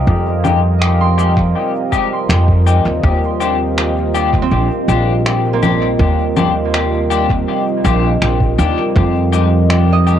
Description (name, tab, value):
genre	ambient dub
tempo	81 BPM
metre	4/4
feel	straight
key	unclear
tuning	A4 = 439 Hz
part	deep dark ambient pad	sustained chords	0.0-10.2 s	G3 to Eb5	-18 LUFS	right 2 dB	chorus, built-in reverb, cassette tape
part	concert harp	arpeggios	0.0-10.2 s	Bb3 to C6	-25 LUFS	right 8 dB	cassette tape, dub echo
part	upright bass	bass	0.0-10.2 s	Bb1 to F2	-14 LUFS	equal	none
part	electronic kick drum	drums	0.1-9.1 s	none	-18 LUFS	equal	cassette tape
part	clean electric guitar	stabs	0.4-10.2 s	Ab3 to G4	-20 LUFS	left 8 dB	lush chorus, low-pass filter, cassette tape, dub echo
part	electronic congas, cabasa and finger snaps	drums	0.4-10.2 s	none	-22 LUFS	left 1 dB	cassette tape, dub echo
room	light reverb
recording	home recording on cassette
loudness	-12 LUFS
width	side -10 dB against mid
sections	0.0-10.2 A section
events	fade-in on ambient pad 0.0-10.2; filter sweep on clean electric guitar 0.0-10.2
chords	0.0 Fm9; 3.0 Ebmaj9; 9.0 Fm9